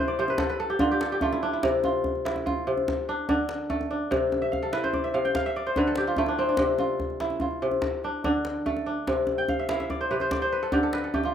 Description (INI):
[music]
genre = west african traditional, West African string and xylophone music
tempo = 97 BPM (dotted quarters)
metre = 12/8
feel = straight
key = C major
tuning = A4 = 442 Hz
[part]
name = kora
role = arpeggios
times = 0.0-11.3 s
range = C3 to A5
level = -25 LUFS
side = equal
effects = slapback echo
[part]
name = djembe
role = percussion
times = 0.1-11.3 s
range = none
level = -31 LUFS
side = equal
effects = none
[sound]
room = light reverb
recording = recorded outdoors, with no room sound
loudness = -24 LUFS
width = side -8 dB against mid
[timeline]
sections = 0.0-1.6 A section; 1.6-11.3 B section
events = kora fill 0.0-1.6, 4.4-6.6, 9.4-11.3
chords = 0.4 D5; 1.6 C; 2.9 Dm; 4.1 C; 5.4 D5; 6.6 C; 7.8 Dm; 9.1 C; 10.3 D5